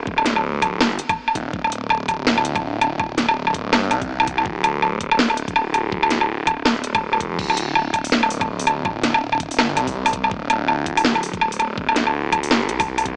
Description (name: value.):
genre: half-time drum and bass.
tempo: 164 BPM.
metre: 4/4.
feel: swing 59% on 16ths, half-time.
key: unclear.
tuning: A4 = 435 Hz.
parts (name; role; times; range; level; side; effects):
phased detuned saw bass; bass; 0.0-13.2 s; D1 to C2; -26 LUFS; equal; phaser.
electronic kick drum; drums; 0.1-13.1 s; none; -33 LUFS; equal; none.
drum and bass drum kit; drums; 0.2-13.1 s; crash cymbal, hi-hat, snare drum, woodblock; -21 LUFS; equal; none.
room: light reverb.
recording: dry, gritty hardware recording, small speaker sound.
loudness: -20 LUFS.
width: mono.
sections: 0.0-13.2 A section.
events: none.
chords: none.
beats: | 0.07 0.44 0.80 1.17 | 1.53 1.90 2.27 2.63 | 3.00 3.36 3.73 4.09 | 4.46 4.83 5.19 5.56 | 5.92 6.29 6.66 7.02 | 7.39 7.75 8.12 8.48 | 8.85 9.22 9.58 9.95 | 10.31 10.68 11.04 11.41 | 11.78 12.14 12.51 12.88.